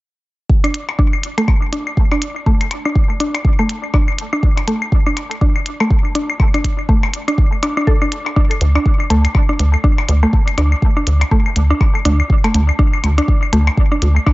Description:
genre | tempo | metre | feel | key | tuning
minimal techno | 122 BPM | 4/4 | swing 59% on 16ths | unclear | A4 = 441 Hz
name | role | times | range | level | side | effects
electronic kick drum | drums | 0.5-14.3 s | none | -14 LUFS | equal | none
mallet-like synth pluck | riff | 0.6-14.3 s | A3 to A4 | -20 LUFS | equal | chorus, cassette tape, sidechain pumping, dub echo
electronic hi-hat | drums | 0.6-14.1 s | none | -26 LUFS | equal | none
claves and percussion blips | percussion | 0.6-14.3 s | none | -24 LUFS | left 5 dB | analog delay
rubbery square bass | bass | 8.6-14.2 s | D2 | -12 LUFS | equal | sidechain pumping
room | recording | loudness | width
light reverb, digital ambience | echo-heavy mix, nothing above 7.7 kHz | -13 LUFS | side -19 dB against mid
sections
0.5-14.3 A section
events
filter sweep on synth arpeggio sound 0.5-14.3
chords
none

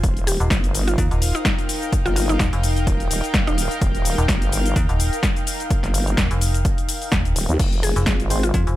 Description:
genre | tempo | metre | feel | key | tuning
bass house | 127 BPM | 4/4 | swing 55% on 16ths | unclear | A4 = 440 Hz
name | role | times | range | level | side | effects
vowel-sweep wobble bass | bass | 0.0-8.5 s | Eb1 to Eb2 | -22 LUFS | equal | chorus, sidechain pumping
electronic kick drum | drums | 0.0-8.6 s | none | -22 LUFS | equal | studio reverb
house drum kit | drums | 0.0-8.8 s | crash cymbal, hi-hat, shaker, snare drum | -25 LUFS | left 2 dB | studio reverb
airy breathy pad | texture | 0.0-8.8 s | Eb4 to Ab5 | -28 LUFS | left 1 dB | chorus, sidechain pumping
mallet-like synth pluck | melody | 0.3-4.1, 7.8-8.8 s | Eb4 to Ab4 | -27 LUFS | left 1 dB | chorus, ping-pong delay
metallic FM bass | bass | 0.4-8.8 s | Eb1 to F2 | -20 LUFS | equal | overdrive, sidechain pumping
percussive organ stab | stabs | 8.3-8.4 s | Ab3 to C5 | -28 LUFS | equal | analog chorus, cassette tape, sidechain pumping, ping-pong delay
room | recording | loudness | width
digital ambience | none | -18 LUFS | side -15 dB against mid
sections
0.0-8.8 A section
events
none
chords
0.0 Eb; 7.6 Fm

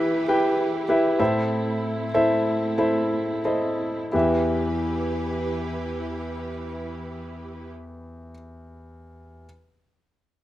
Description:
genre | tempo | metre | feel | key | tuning
pop | 86-100 BPM | 4/4 | straight | E minor | A4 = 440 Hz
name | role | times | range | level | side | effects
warm concert grand piano | accompaniment | 0.0-9.5 s | E2 to G5 | -23 LUFS | equal | none
rich symphonic string section | sustained chords | 0.0-7.7 s | E3 to B4 | -33 LUFS | right 4 dB | none
room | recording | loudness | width
light reverb | rough home demo mix | -22 LUFS | side -14 dB against mid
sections
0.0-4.1 A section; 4.1-6.9 B section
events
slowing down 0.0-4.1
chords
0.0 Em; 1.2 Am; 4.1 Em

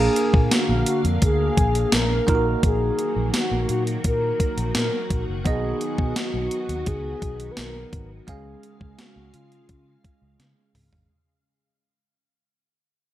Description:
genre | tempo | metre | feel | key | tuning
1980s-style pop | 85 BPM | 4/4 | straight | unclear | A4 = 439 Hz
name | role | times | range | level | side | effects
mellow horn-like synth lead | melody | 0.0-10.4 s | E#4 to B4 | -26 LUFS | left 1 dB | chorus, tape echo
bell-like tine electric piano | accompaniment | 0.0-11.1 s | G#3 to E#5 | -29 LUFS | right 5 dB | phaser
soft string machine | sustained chords | 0.2-11.1 s | C#3 to E#5 | -32 LUFS | equal | ensemble chorus
vintage muted fingered electric bass | bass | 0.0-11.1 s | F#1 to C#3 | -26 LUFS | equal | none
clean 12-bit digital drum machine | drums | 0.2-11.1 s | hi-hat, kick drum, snare drum, tambourine, toms | -23 LUFS | equal | overdrive, gated reverb
room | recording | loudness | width
light reverb, digital ambience | none | -20 LUFS | side -13 dB against mid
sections
0.0-11.1 A section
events
fade-out 0.0-11.1; drum fill 10.4-11.1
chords
0.0 A#; 2.3 D#m/A#; 5.5 B; 8.3 C#

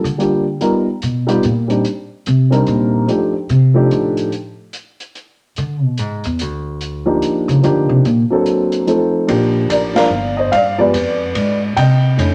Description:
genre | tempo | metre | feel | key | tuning
jazz piano trio | 145 BPM | 3/4 | swing 64% on 8ths | G minor, Bb major from 9.3 s | A4 = 440 Hz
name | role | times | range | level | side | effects
dark baby grand piano | melody | 0.0-4.3, 7.1-12.3 s | D3 to G5 | -18 LUFS | equal | none
upright bass | bass | 0.0-12.3 s | G1 to D3 | -18 LUFS | equal | none
open jazz drum kit | drums | 0.1-12.3 s | hi-hat, kick drum, ride cymbal, snare drum | -30 LUFS | equal | none
room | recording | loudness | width
moderate studio reverb, RT60 0.9 s | none | -16 LUFS | mono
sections
0.0-9.3 A section; 9.3-12.3 B section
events
upright bass solo 0.0-9.3; band accent 9.9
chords
0.0 Gm7; 0.6 G7alt; 1.8 Cm9; 3.1 F13; 4.3 N.C.; 5.6 E7; 6.8 Ebmaj9; 8.0 D7b13; 8.9 F7; 9.3 Bb6; 10.5 G7b9; 11.8 Cmadd9

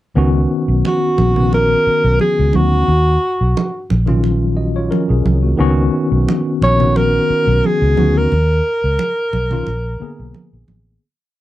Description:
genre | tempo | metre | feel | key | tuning
lush 1970s-style soul | 88 BPM | 4/4 | swing 54% on 16ths | unclear | A4 = 440 Hz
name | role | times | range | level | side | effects
tine electric piano | accompaniment | 0.2-11.0 s | D3 to Eb5 | -18 LUFS | left 2 dB | medium stereo tremolo
vintage muted fingered electric bass | bass | 0.2-11.0 s | A1 to Eb2 | -15 LUFS | equal | none
congas | percussion | 0.8-10.9 s | none | -21 LUFS | right 5 dB | none
mellow alto saxophone | melody | 0.9-10.7 s | Gb4 to Db5 | -16 LUFS | equal | none
room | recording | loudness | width
little or no reverb | dry, close 1970s-style studio recording | -13 LUFS | side -15 dB against mid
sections
0.2-11.0 verse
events
fade-out 8.3-11.0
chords
0.2 Db9sus4; 2.9 Ebm9; 5.6 Db9sus4; 8.3 Ebm9; 9.7 Bb7b9

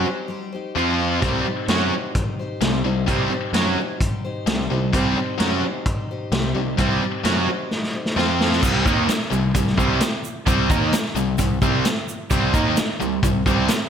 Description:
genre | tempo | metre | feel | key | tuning
classic rock | 130 BPM | 4/4 | straight | C minor from 8.6 s | A4 = 437 Hz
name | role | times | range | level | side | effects
picked steel-string acoustic guitar | accompaniment | 0.0-8.6 s | C3 to C5 | -29 LUFS | left 4 dB | none
crunchy overdriven guitar | riff | 0.0-13.7 s | C3 to F#4 | -24 LUFS | right 9 dB | none
tight distorted guitar | riff | 0.0-13.7 s | C3 to F#4 | -25 LUFS | left 10 dB | distortion
growling picked electric bass | bass | 0.0-13.7 s | C2 to F#2 | -25 LUFS | equal | overdrive
vintage drum kit | drums | 1.2-13.8 s | crash cymbal, hi-hat, kick drum, snare drum | -23 LUFS | equal | none
egg shaker | percussion | 8.6-13.8 s | none | -38 LUFS | right 9 dB | none
room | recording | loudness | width
moderate recital hall reverb, RT60 1.4 s, studio reverb | big arena sound | -18 LUFS | side -8 dB against mid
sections
0.0-8.6 A section; 8.6-13.9 B section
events
drum fill 7.7-8.6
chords
0.0 Cm; 0.8 F5; 1.2 Cm; 8.2 F5; 8.6 Cm

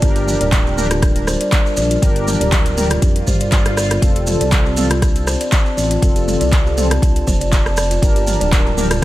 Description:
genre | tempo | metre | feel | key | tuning
afro house | 120 BPM | 4/4 | swing 54% on 16ths | G minor | A4 = 440 Hz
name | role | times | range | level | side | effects
dark analog pad | sustained chords | 0.0-9.0 s | G3 to A5 | -26 LUFS | equal | wide subtle chorus, sidechain pumping
mellow synth brass | stabs | 0.0-8.9 s | C4 to Bb4 | -24 LUFS | left 1 dB | chorus, sidechain pumping, digital delay
smooth gliding synth bass | bass | 0.0-9.0 s | D1 to C2 | -20 LUFS | equal | sidechain pumping
deep house drum kit | drums | 0.0-9.0 s | handclaps, hi-hat, rim click, toms | -22 LUFS | right 1 dB | overdrive
electronic kick drum | drums | 0.0-9.0 s | none | -15 LUFS | equal | overdrive
maracas | percussion | 0.0-9.0 s | none | -28 LUFS | right 2 dB | none
kalimba | arpeggios | 0.2-9.0 s | D4 to D5 | -22 LUFS | equal | sidechain pumping, digital delay
swell | sound effects | 3.2-4.0 s | none | -29 LUFS | equal | none
room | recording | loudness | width
little or no reverb | none | -13 LUFS | side -16 dB against mid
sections
0.0-9.0 A section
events
swell 3.2-4.0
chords
0.0 Gm; 4.0 F; 8.0 Gm

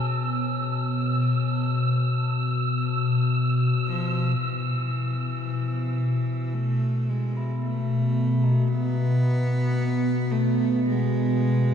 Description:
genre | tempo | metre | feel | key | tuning
dark ambient drone | free time | none | none | E major | A4 = 442 Hz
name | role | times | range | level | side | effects
dark analog pad | sustained chords | 0.0-4.4 s | B3 to G#5 | -50 LUFS | right 1 dB | none
tubular bells | arpeggios | 0.0-11.7 s | D#4 to A4 | -41 LUFS | right 3 dB | tape echo
deep rumbling drone | drone | 0.0-11.7 s | B2 | -23 LUFS | left 1 dB | built-in reverb, phaser
wind-like tuned noise texture | texture | 0.0-4.4 s | E6 | -32 LUFS | right 3 dB | built-in reverb
clear cello | melody | 3.9-11.7 s | E3 to B3 | -31 LUFS | right 1 dB | tape echo
room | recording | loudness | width
moderate huge ambient reverb, RT60 8.1 s | in a vast, echoing space | -22 LUFS | side -8 dB against mid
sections
0.0-4.4 A section; 4.4-11.7 B section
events
fade-in on tubular bells 4.4-11.7; fade-in on cello 4.4-11.7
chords
0.0 E5

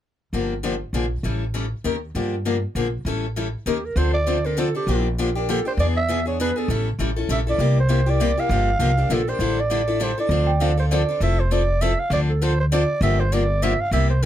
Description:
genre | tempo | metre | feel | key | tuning
acoustic string swing (jazz manouche) | 199 BPM | 3/4 | swing 57% on 8ths | D minor, F major from 11.2 s | A4 = 443 Hz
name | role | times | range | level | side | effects
picked steel-string acoustic guitar | accompaniment | 0.3-14.3 s | C3 to Bb4 | -24 LUFS | left 3 dB | none
upright bass | bass | 0.3-14.3 s | F1 to G2 | -22 LUFS | equal | none
growling clarinet | melody | 3.7-14.3 s | G4 to F5 | -24 LUFS | right 3 dB | none
worn celesta | second line | 10.5-11.2 s | D5 to G5 | -28 LUFS | right 6 dB | none
room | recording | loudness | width
light reverb | close, detailed microphones | -19 LUFS | side -11 dB against mid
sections
0.3-4.0 A section; 4.0-11.2 B section; 11.2-14.3 C section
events
none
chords
0.3 Gm7; 0.9 Bb7; 1.2 A7; 1.8 Eb7; 2.2 Gm7; 2.8 Bb7; 3.1 A7; 3.7 Eb7; 4.0 Dm7; 4.9 Bb6; 5.8 E7; 6.7 A7; 7.6 C9; 8.5 Gm7; 9.4 A7sus4; 10.3 Dm7; 11.2 Fmaj7; 12.1 Dm7; 13.0 Gm7

